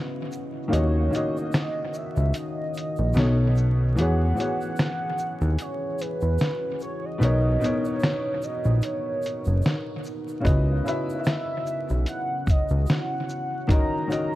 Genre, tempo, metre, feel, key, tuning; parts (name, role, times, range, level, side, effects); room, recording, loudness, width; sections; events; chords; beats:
lo-fi hip hop; 74 BPM; 4/4; swing 56% on 16ths; C# dorian; A4 = 440 Hz
warm velvety synth lead; melody; 0.0-14.4 s; B4 to A#5; -31 LUFS; right 2 dB; chorus, analog delay
warm upright piano; accompaniment; 0.0-14.4 s; B2 to E5; -28 LUFS; left 1 dB; cassette tape, analog delay
deep dark ambient pad; sustained chords; 0.0-14.4 s; C#3 to D#5; -35 LUFS; left 1 dB; chorus, built-in reverb
dusty soul sampler-style drum kit; drums; 0.3-14.3 s; hi-hat, kick drum, shaker, snare drum; -25 LUFS; equal; vintage 12-bit sampler grit, analog delay
egg shaker; percussion; 0.3-14.3 s; -55 LUFS; right 5 dB; analog delay
fat analog bass; bass; 0.7-12.9 s; F#1 to E2; -21 LUFS; equal
digital ambience; echo-heavy mix, vinyl crackle; -22 LUFS; side -16 dB against mid
0.0-14.4 A section
break 0.0-10.4
0.0 C#m11; 0.7 D#m7; 3.2 B9; 4.0 E69; 7.2 Bmaj9; 10.4 C#m11; 13.7 D#m7
| 0.72 1.53 2.34 3.15 | 3.96 4.77 5.58 6.39 | 7.21 8.02 8.83 9.64 | 10.45 11.26 12.07 12.88 | 13.69